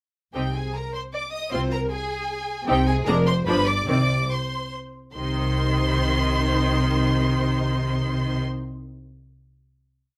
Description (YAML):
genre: quick classical-period movement for string orchestra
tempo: 139-157 BPM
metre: 3/4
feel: straight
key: C minor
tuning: A4 = 440 Hz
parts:
  - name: rich chamber violin section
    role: melody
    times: 0.3-8.4 s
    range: G5 to Eb6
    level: -31 LUFS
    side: equal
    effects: none
  - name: rich chamber violin section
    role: second line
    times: 0.3-8.4 s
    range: G4 to Eb5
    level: -33 LUFS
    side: equal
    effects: none
  - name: clear symphonic viola section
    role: accompaniment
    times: 0.3-8.4 s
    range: Eb3 to F4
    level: -30 LUFS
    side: equal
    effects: none
  - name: rich chamber cello section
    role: bass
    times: 0.3-8.4 s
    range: F2 to C3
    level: -29 LUFS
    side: equal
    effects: none
  - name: rich chamber double bass section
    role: bass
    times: 0.3-8.4 s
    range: F1 to C2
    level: -29 LUFS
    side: equal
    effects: none
room: light reverb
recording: none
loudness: -24 LUFS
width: mono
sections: 0.3-5.2 A section; 5.2-7.7 final chord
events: slowing down 2.1-5.2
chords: 0.3 Cm; 1.5 Fm/C; 2.7 Cm; 3.1 Ddim/F; 3.5 G7; 3.9 Cm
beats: | 0.34 0.74 1.13 | 1.52 1.91 2.29 | 2.68 3.07 3.47 | 3.88 4.30 4.73 | 5.16 5.57 5.99 | 6.41 6.82 7.24